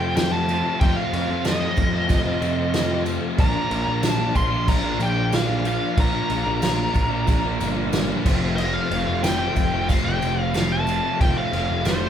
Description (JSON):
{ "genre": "classic rock", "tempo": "92 BPM", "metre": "4/4", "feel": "straight", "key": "unclear", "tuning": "A4 = 439 Hz", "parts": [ { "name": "bluesy overdriven lead guitar", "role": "melody", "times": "0.0-12.1 s", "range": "C5 to C6", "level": "-26 LUFS", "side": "equal", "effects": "wah, distortion" }, { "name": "tonewheel organ", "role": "sustained chords", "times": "0.0-12.1 s", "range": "C4 to D5", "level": "-36 LUFS", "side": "right 2 dB", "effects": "none" }, { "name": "distorted electric guitar", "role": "riff", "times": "0.0-12.1 s", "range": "F2 to F4", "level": "-30 LUFS", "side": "right 7 dB", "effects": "distortion" }, { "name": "overdriven semi-hollow guitar", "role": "riff", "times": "0.0-12.1 s", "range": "F2 to D4", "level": "-27 LUFS", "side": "left 6 dB", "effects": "none" }, { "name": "fuzz picked electric bass", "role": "bass", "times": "0.0-12.1 s", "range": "F1 to F2", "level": "-26 LUFS", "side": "right 1 dB", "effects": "overdrive" }, { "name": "vintage drum kit", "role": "drums", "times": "0.2-12.0 s", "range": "crash cymbal, kick drum, snare drum", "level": "-24 LUFS", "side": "equal", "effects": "none" }, { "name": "tambourine", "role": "percussion", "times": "0.2-12.0 s", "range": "none", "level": "-43 LUFS", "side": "right 8 dB", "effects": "none" } ], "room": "moderate large studio reverb, RT60 0.9 s", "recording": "band playing live in one room", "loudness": "-19 LUFS", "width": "side -9 dB against mid", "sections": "0.0-12.1 A section", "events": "none", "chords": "0.0 F; 3.4 Bb; 8.3 F" }